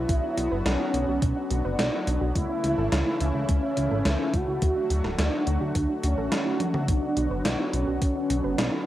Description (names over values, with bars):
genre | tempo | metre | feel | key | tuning
synthwave | 106 BPM | 4/4 | straight | B minor | A4 = 445 Hz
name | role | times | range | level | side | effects
expressive synth lead | melody | 0.0-8.8 s | C#4 to F#4 | -28 LUFS | equal | ensemble chorus, cassette tape, tape echo
lush unison pad | sustained chords | 0.0-8.9 s | C#3 to F#4 | -32 LUFS | equal | chorus, sidechain pumping, cassette tape
soft round pluck | arpeggios | 0.0-8.8 s | A3 to D5 | -36 LUFS | right 5 dB | chorus, cassette tape, tape echo
chorused synth bass | bass | 0.0-8.7 s | D1 to D2 | -27 LUFS | equal | none
electronic kick drum | drums | 0.1-8.1 s | none | -27 LUFS | equal | overdrive, cassette tape
gated 80s digital drum machine | drums | 0.1-8.7 s | hi-hat, snare drum, toms | -29 LUFS | equal | gated reverb, gated reverb snare, overdrive, cassette tape
room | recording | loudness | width
moderate spring reverb, RT60 1.5 s, digital ambience | home recording on cassette | -23 LUFS | side -14 dB against mid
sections
0.0-8.9 A section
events
drum fill 6.6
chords
0.0 Bm; 2.4 A; 4.6 D; 6.9 Bm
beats
| 0.09 0.66 1.23 1.79 | 2.36 2.92 3.49 4.05 | 4.62 5.19 5.75 6.32 | 6.88 7.45 8.02 8.58